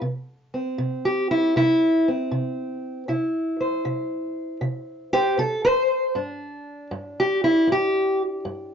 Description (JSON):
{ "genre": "acoustic country blues, solo or duo", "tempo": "78 BPM", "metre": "4/4", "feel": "swing 67% on 8ths", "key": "unclear", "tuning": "A4 = 436 Hz", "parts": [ { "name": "fingerpicked steel-string acoustic guitar", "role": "solo", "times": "0.0-8.7 s", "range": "G2 to C5", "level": "-21 LUFS", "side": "equal", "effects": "none" } ], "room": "moderate small room reverb, RT60 0.5 s", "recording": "dark, warm production, nothing above 7.5 kHz", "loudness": "-21 LUFS", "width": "side -7 dB against mid", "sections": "0.0-8.7 A section", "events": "steel-string acoustic guitar solo 0.0-8.7", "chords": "0.0 C; 6.1 G5" }